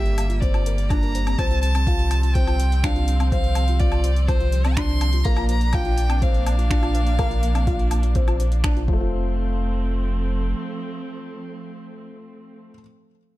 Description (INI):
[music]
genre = piano and strings electronica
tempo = 124 BPM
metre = 4/4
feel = straight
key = F major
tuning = A4 = 441 Hz
[part]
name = rich violin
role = melody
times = 0.0-8.6 s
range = C5 to C6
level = -29 LUFS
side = right 1 dB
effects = ping-pong delay
[part]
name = dark chamber string section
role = sustained chords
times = 0.0-12.7 s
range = D3 to D4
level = -32 LUFS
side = right 2 dB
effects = sidechain pumping
[part]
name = felt-muted upright piano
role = riff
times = 0.0-12.8 s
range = F3 to G4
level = -30 LUFS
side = left 3 dB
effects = ping-pong delay
[part]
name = warm sub bass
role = bass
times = 0.0-10.5 s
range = F1 to C2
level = -21 LUFS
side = equal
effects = sidechain pumping
[part]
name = deep house drum kit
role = drums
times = 0.1-8.9 s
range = finger snaps, hi-hat, woodblock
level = -32 LUFS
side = left 2 dB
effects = overdrive
[part]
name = soft round pluck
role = arpeggios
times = 0.2-9.3 s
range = C4 to F5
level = -35 LUFS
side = left 3 dB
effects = chorus, sidechain pumping, ping-pong delay
[part]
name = electronic kick drum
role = drums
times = 0.4-9.0 s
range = none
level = -22 LUFS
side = equal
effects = overdrive
[sound]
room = little or no reverb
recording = none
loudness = -18 LUFS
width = side -16 dB against mid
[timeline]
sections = 0.0-9.1 A section; 9.1-13.0 B section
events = drop 0.0-9.1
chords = 0.0 Gm; 1.4 Csus4; 5.3 Bb; 8.9 F